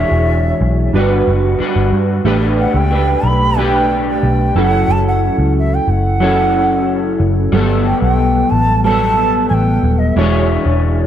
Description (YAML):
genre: indie pop, bedroom pop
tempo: 91 BPM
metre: 4/4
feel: straight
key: G lydian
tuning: A4 = 440 Hz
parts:
  - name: bright bansuri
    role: melody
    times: 0.0-11.0 s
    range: E5 to B5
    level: -18 LUFS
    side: right 2 dB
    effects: lush chorus, analog delay
  - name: electric guitar through a small old amp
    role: accompaniment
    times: 0.0-11.1 s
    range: E3 to C#5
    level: -18 LUFS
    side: left 6 dB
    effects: ensemble chorus, warbly pitch drift
  - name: warbly lo-fi synth keys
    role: accompaniment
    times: 0.0-11.1 s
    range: F#3 to C#5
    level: -18 LUFS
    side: right 5 dB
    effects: chorus
  - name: vintage muted picked electric bass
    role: bass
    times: 0.0-11.1 s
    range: Eb1 to G2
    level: -16 LUFS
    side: equal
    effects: none
room: light reverb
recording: none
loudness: -12 LUFS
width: side -10 dB against mid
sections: 0.0-2.3 A section; 2.3-11.1 B section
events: none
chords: 0.0 E13; 1.0 Gmaj7; 2.3 A9sus4; 4.6 F#m7; 7.5 Gmaj9; 10.2 E13